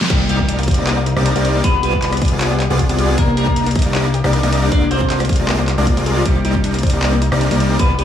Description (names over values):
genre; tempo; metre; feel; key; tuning
future bass; 156 BPM; 4/4; half-time; C minor; A4 = 445 Hz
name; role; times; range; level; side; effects
pop drum kit; drums; 0.0-8.0 s; crash cymbal, handclaps, hi-hat, rim click, snare drum; -24 LUFS; equal; studio reverb
riser and impact; sound effects; 0.0-1.6 s; none; -26 LUFS; equal; none
clean electric guitar; melody; 0.1-8.0 s; G3 to D5; -22 LUFS; equal; wide subtle chorus, sidechain pumping, digital delay
airy dreamy lead; arpeggios; 0.1-8.0 s; D5; -28 LUFS; equal; chorus, sidechain pumping
wide unison pluck; arpeggios; 0.1-8.0 s; Bb3 to Eb5; -25 LUFS; left 4 dB; sidechain pumping, digital delay
supersaw chords; riff; 0.1-8.0 s; G3 to D5; -21 LUFS; equal; sidechain pumping, digital delay
fat analog bass; bass; 0.1-8.0 s; C2; -18 LUFS; left 1 dB; sidechain pumping
electronic kick drum; drums; 0.1-7.9 s; none; -18 LUFS; equal; studio reverb
room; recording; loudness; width
light reverb, digital ambience; small room ambience; -13 LUFS; side -10 dB against mid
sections
0.1-8.0 A section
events
drop 0.1-8.0; impact 0.1-1.6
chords
0.1 Cm9; 1.6 G7b9/C; 3.2 Ebmaj7/C; 4.7 Bb9/C; 6.3 Cm9